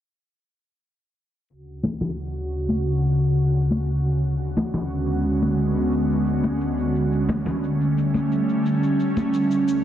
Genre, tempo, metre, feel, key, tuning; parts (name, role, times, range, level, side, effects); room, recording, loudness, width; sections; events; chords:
sunset chillout; 88 BPM; 4/4; straight; D major; A4 = 440 Hz
ethereal airy pad; sustained chords; 1.8-9.8 s; D2 to F#4; -20 LUFS; equal; ensemble chorus, built-in reverb
cabasa; drums; 1.5-9.8 s; -49 LUFS; left 7 dB; studio reverb
congas; percussion; 1.8-9.3 s; -26 LUFS; left 2 dB
wet lush hall reverb, RT60 1.9 s, studio reverb; dense, heavily limited modern master, low-pass filter; -20 LUFS; side -10 dB against mid
1.5-9.8 A section
filter sweep 1.5-9.8
1.5 Dmaj7; 4.2 Bm69/D; 7.0 A7/D